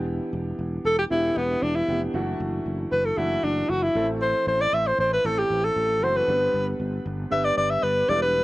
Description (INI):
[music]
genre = 1980s-style pop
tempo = 116 BPM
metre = 4/4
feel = straight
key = G major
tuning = A4 = 443 Hz
[part]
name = warm baby grand piano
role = accompaniment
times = 0.0-8.4 s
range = E3 to B4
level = -30 LUFS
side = right 1 dB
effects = none
[part]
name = sustaining fretless electric bass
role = bass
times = 0.0-8.4 s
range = E1 to A1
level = -30 LUFS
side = equal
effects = none
[part]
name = breathy alto saxophone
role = melody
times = 0.9-8.4 s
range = B3 to E5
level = -22 LUFS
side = equal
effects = none
[sound]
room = wet booth ambience, RT60 0.2 s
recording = home recording on cassette, nothing above 10.6 kHz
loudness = -22 LUFS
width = side -18 dB against mid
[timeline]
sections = 0.0-8.4 A section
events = alto saxophone solo 0.0-8.4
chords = 0.0 Em7; 2.1 Dadd9/F#; 4.0 Am; 6.3 G